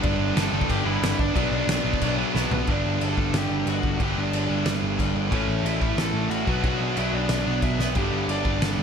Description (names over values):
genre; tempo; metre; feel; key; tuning
punk rock; 182 BPM; 4/4; straight; unclear; A4 = 440 Hz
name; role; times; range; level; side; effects
dark smooth lead guitar; melody; 0.0-8.8 s; B3 to D6; -31 LUFS; equal; overdrive, tape echo
distorted electric guitar; riff; 0.0-8.8 s; G2 to E4; -30 LUFS; left 13 dB; overdrive
overdriven semi-hollow guitar; riff; 0.0-8.8 s; G2 to D4; -30 LUFS; equal; none
tight distorted guitar; riff; 0.0-8.8 s; G2 to D4; -29 LUFS; right 16 dB; distortion
picked electric bass; bass; 0.0-8.8 s; G1 to B1; -28 LUFS; equal; none
loose indie drum kit; drums; 0.0-8.7 s; crash cymbal, kick drum, snare drum, toms; -27 LUFS; equal; none
room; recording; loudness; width
little or no reverb; none; -21 LUFS; side -7 dB against mid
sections
0.0-2.7 A section; 2.7-8.8 B section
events
drum fill 2.3-2.7, 7.8; half time 2.7-8.8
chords
0.0 G; 1.4 Bm; 2.7 G; 5.3 A; 6.5 Bm; 8.0 G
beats
| 0.04 0.37 0.70 1.03 | 1.36 1.69 2.02 2.35 | 2.68 3.01 3.34 3.67 | 4.00 4.33 4.66 4.99 | 5.32 5.65 5.98 6.31 | 6.64 6.97 7.30 7.63 | 7.96 8.29 8.62